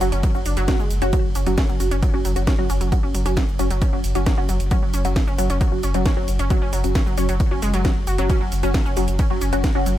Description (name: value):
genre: driving peak-time techno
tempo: 134 BPM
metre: 4/4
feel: straight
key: unclear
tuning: A4 = 441 Hz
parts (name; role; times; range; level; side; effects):
- wide unison pluck; riff; 0.0-9.9 s; F#3 to F#4; -27 LUFS; equal; overdrive, sidechain pumping, ping-pong delay
- filtered dub chord stab; stabs; 0.0-9.9 s; F#3 to F#4; -26 LUFS; left 1 dB; phaser, analog chorus, sidechain pumping, tape echo
- warm sub bass; bass; 0.0-10.0 s; F#1; -23 LUFS; equal; sidechain pumping, low-pass filter
- techno drum kit; drums; 0.0-10.0 s; hi-hat, ride cymbal, shaker, snare drum; -30 LUFS; right 1 dB; sidechain pumping on hats, small room ambience, sidechain pumping on perc, sidechain pumping on cymbals
- electronic kick drum; drums; 0.2-9.7 s; none; -21 LUFS; equal; small room ambience
room: little or no reverb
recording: none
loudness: -18 LUFS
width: side -13 dB against mid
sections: 0.0-10.0 A section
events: none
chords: 0.0 F#5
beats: 0.23 0.68 | 1.13 1.58 2.03 2.47 | 2.92 3.37 3.82 4.26 | 4.71 5.16 5.61 6.06 | 6.50 6.95 7.40 7.85 | 8.29 8.74 9.19 9.64